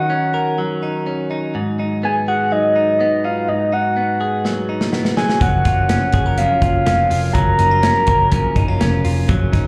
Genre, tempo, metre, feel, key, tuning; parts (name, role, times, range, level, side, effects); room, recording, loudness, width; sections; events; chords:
jangly indie pop; 124 BPM; 4/4; straight; F# major; A4 = 440 Hz
soft octave-layered synth lead; melody; 0.0-9.0 s; D#5 to A#5; -20 LUFS; equal; chorus, slapback echo
direct-recorded clean electric guitar; arpeggios; 0.0-9.7 s; G#2 to A#4; -24 LUFS; equal; slapback echo, tape echo
modern studio drum kit; drums; 4.5-9.6 s; hi-hat, kick drum, snare drum; -22 LUFS; equal
electric guitar through a small old amp; accompaniment; 5.4-9.7 s; F#2 to C#4; -28 LUFS; equal
vintage muted picked electric bass; bass; 5.4-9.7 s; E#1 to F#1; -21 LUFS; equal
light reverb, studio reverb; live gig heard through the venue's PA, club ambience; -17 LUFS; mono
0.0-9.7 A section
drum fill 4.4-5.4
0.0 D#m7; 1.5 G#m7; 5.2 F#maj7